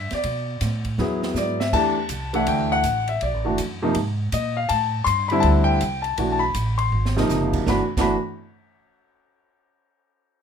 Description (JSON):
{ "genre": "jazz piano trio", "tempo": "162 BPM", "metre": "4/4", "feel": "swing 64% on 8ths", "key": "unclear", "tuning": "A4 = 440 Hz", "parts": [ { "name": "clear concert grand piano", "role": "melody", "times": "0.0-8.2 s", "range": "C3 to C6", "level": "-22 LUFS", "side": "left 1 dB", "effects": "none" }, { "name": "upright bass", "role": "bass", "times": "0.0-8.1 s", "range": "F#1 to B2", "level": "-25 LUFS", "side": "right 1 dB", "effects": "none" }, { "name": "open jazz drum kit", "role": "drums", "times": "0.1-8.0 s", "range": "crash cymbal, hi-hat, kick drum, ride cymbal, snare drum", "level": "-31 LUFS", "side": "right 2 dB", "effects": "none" } ], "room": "light reverb", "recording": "minimal, uncompressed stereo recording", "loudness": "-20 LUFS", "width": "side -7 dB against mid", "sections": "0.0-1.7 A section; 1.7-7.7 B section; 7.7-9.1 C section", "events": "drum fill 1.0-1.7, 6.9-7.3", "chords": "0.3 Asus24; 1.0 E; 1.7 Am7; 2.5 D5; 3.2 Bm7; 4.0 Absus2; 4.7 Am7; 5.4 D7sus4; 6.2 Bm7; 6.9 Ab7; 7.7 N.C." }